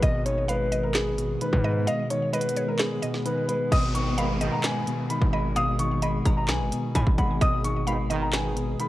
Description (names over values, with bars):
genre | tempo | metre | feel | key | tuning
hip hop, trap | 130 BPM | 4/4 | half-time | G# dorian | A4 = 440 Hz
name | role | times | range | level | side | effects
dark concert grand piano | melody | 0.0-8.9 s | G#4 to D#6 | -28 LUFS | equal | low-pass filter
mallet-like synth pluck | second line | 0.0-8.9 s | C#5 to A#5 | -35 LUFS | right 1 dB | chorus, ping-pong delay
semi-hollow electric guitar | accompaniment | 0.0-8.9 s | B2 to B4 | -29 LUFS | left 1 dB | spring reverb, low-pass filter
granular cloud pad | sustained chords | 0.0-8.9 s | D#3 to G#4 | -36 LUFS | equal | built-in reverb
distorted 808-style bass | bass | 0.0-8.8 s | G#1 to G#2 | -28 LUFS | equal | distortion
trap drum kit | drums | 0.0-8.9 s | crash cymbal, handclaps, hi-hat, kick drum, snare drum | -27 LUFS | equal | none
swell and downlifter | sound effects | 2.5-7.4 s | none | -37 LUFS | left 1 dB | none
clear brass ensemble | stabs | 4.2-4.8, 7.9-8.5 s | G#2 to D#3 | -33 LUFS | right 4 dB | none
room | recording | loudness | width
little or no reverb | worn, warbling old tape, cassette tape, warbly pitch drift | -23 LUFS | side -15 dB against mid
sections
0.0-3.7 A section; 3.7-8.9 B section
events
kick muted 1.9-3.7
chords
0.0 G#m